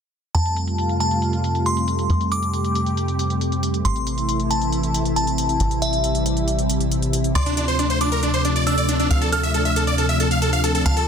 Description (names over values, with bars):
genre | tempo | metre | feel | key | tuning
uplifting trance | 137 BPM | 4/4 | straight | unclear | A4 = 440 Hz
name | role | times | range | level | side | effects
glassy synth bell | second line | 0.3-11.1 s | E5 to F6 | -25 LUFS | equal | chorus, ping-pong delay
analog string pad | sustained chords | 0.3-11.1 s | C3 to G4 | -23 LUFS | equal | ensemble chorus
tight sequencer bass | bass | 0.3-11.1 s | A1 to F2 | -23 LUFS | equal | none
electronic hi-hat | drums | 0.3-11.1 s | none | -30 LUFS | equal | overdrive, low-pass filter on hats
big supersaw lead | melody | 7.4-11.0 s | D4 to F5 | -22 LUFS | right 1 dB | ping-pong delay
room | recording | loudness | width
light reverb | dense, heavily limited modern master | -18 LUFS | side -7 dB against mid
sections
0.3-11.1 A section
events
none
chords
0.3 Fadd9; 3.8 Am; 7.4 Dm7